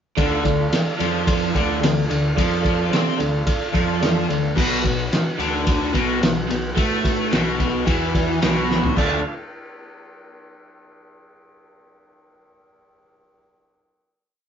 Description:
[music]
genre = classic rock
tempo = 109 BPM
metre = 4/4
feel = straight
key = D dorian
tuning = A4 = 438 Hz
[part]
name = mellow reed electric piano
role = accompaniment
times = 0.2-9.2 s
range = F#4 to B5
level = -28 LUFS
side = right 7 dB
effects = none
[part]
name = tonewheel organ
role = sustained chords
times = 0.2-9.3 s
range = D4 to F#5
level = -33 LUFS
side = equal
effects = none
[part]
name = overdriven electric guitar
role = riff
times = 0.2-9.2 s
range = B2 to D4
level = -24 LUFS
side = left 4 dB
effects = none
[part]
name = overdriven electric guitar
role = riff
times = 0.2-9.2 s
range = B2 to D4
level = -26 LUFS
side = right 4 dB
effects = phaser
[part]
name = fuzz picked electric bass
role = bass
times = 0.2-9.2 s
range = B1 to C3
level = -28 LUFS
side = equal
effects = overdrive
[part]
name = cloth-damped thuddy drum kit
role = drums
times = 0.2-9.1 s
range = crash cymbal, kick drum, ride cymbal, snare drum, toms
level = -22 LUFS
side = equal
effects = none
[sound]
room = wet studio reverb, RT60 0.6 s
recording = band playing live in one room, nothing above 7.5 kHz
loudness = -18 LUFS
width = side -8 dB against mid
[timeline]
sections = 0.2-9.0 riff; 9.0-11.2 final chord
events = reed electric piano fill 7.9-9.0; drum fill 8.7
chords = 0.2 Dm; 4.6 B5; 9.0 Dm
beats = | 0.17 0.72 1.27 1.82 | 2.37 2.92 3.46 4.01 | 4.57 5.12 5.67 6.22 | 6.77 7.32 7.87 8.42 | 8.96

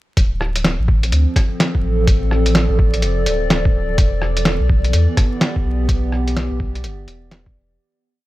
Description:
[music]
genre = future garage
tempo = 126 BPM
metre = 4/4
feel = swing 63% on 16ths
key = D dorian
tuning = A4 = 440 Hz
[part]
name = warbly tape-like pad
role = sustained chords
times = 1.1-7.8 s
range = E3 to D5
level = -23 LUFS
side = equal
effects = chorus, built-in reverb, phaser, sidechain pumping
[part]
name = warm sub bass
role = bass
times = 0.2-7.8 s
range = D1 to E2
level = -18 LUFS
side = equal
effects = sidechain pumping
[part]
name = electronic kick drum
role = drums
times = 0.2-7.5 s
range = none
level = -16 LUFS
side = equal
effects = studio reverb
[part]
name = lo-fi sampler-style drum kit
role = drums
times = 0.2-7.4 s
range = hi-hat, rim click, snare drum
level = -19 LUFS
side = equal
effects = studio reverb
[sound]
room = little or no reverb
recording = dry, gritty hardware recording, vinyl crackle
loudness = -15 LUFS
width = side -17 dB against mid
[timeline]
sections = 0.2-7.8 groove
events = fade-out 5.3-7.8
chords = 0.2 Dm7; 4.0 Em7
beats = | 0.17 0.65 1.12 1.60 | 2.08 2.55 3.03 3.50 | 3.98 4.46 4.93 5.41 | 5.89 6.36 6.84 7.31

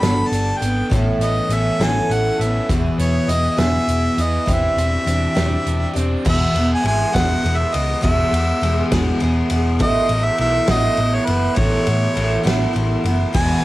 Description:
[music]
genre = folk rock and heartland rock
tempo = 68 BPM (dotted quarters)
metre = 6/8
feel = straight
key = E major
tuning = A4 = 440 Hz
[part]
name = bright harmonica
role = melody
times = 0.0-13.6 s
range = B4 to B5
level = -22 LUFS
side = equal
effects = cassette tape
[part]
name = picked twelve-string acoustic guitar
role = accompaniment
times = 0.0-13.6 s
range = E2 to A4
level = -20 LUFS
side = equal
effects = cassette tape
[part]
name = overdriven electric guitar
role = riff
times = 0.0-6.3, 13.3-13.6 s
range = E2 to A4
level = -27 LUFS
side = right 1 dB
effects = cassette tape
[part]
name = hollow-body short-scale picked electric bass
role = bass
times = 0.0-13.5 s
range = E1 to A2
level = -21 LUFS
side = equal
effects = none
[part]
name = natural country drum kit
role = drums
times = 0.0-13.5 s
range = crash cymbal, hi-hat, kick drum, ride cymbal, snare drum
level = -23 LUFS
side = equal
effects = cassette tape
[sound]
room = light reverb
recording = home recording on cassette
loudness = -16 LUFS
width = side -17 dB against mid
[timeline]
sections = 0.0-6.3 A section; 6.3-13.6 B section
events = none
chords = 0.0 Gadd9; 0.9 Aadd9; 2.7 E; 4.5 Cadd9/E; 6.3 E; 9.8 Asus2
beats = 0.02 | 0.91 1.80 | 2.69 3.58 | 4.47 5.36 | 6.25 7.14 | 8.03 8.92 | 9.80 10.69 | 11.58 12.46 | 13.35

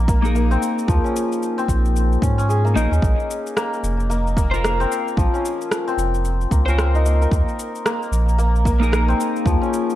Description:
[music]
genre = organic downtempo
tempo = 112 BPM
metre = 4/4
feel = swing 60% on 16ths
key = unclear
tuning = A4 = 438 Hz
[part]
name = santur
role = arpeggios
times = 0.0-10.0 s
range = F3 to Bb4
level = -23 LUFS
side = left 2 dB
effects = digital delay
[part]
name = warm sub bass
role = bass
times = 0.0-9.6 s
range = F1 to Ab2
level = -18 LUFS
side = equal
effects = sidechain pumping
[part]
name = electronic kick drum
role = drums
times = 0.1-9.6 s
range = none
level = -20 LUFS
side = equal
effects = overdrive, studio reverb
[part]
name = electronic shaker and rim click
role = drums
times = 0.1-10.0 s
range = none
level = -27 LUFS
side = equal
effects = overdrive, studio reverb
[part]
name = clean electric guitar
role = accompaniment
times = 0.2-10.0 s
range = Bb3 to C5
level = -25 LUFS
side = left 2 dB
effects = analog chorus, sidechain pumping, digital delay
[sound]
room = light reverb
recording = dark, warm production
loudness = -17 LUFS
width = side -13 dB against mid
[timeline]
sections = 0.0-10.0 A section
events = none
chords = 0.0 Ebsus4; 3.0 Bbmadd9; 7.3 Ebsus4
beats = 0.35 | 0.89 1.43 1.96 2.50 | 3.03 3.57 4.10 4.64 | 5.18 5.71 6.25 6.78 | 7.32 7.85 8.39 8.93 | 9.46

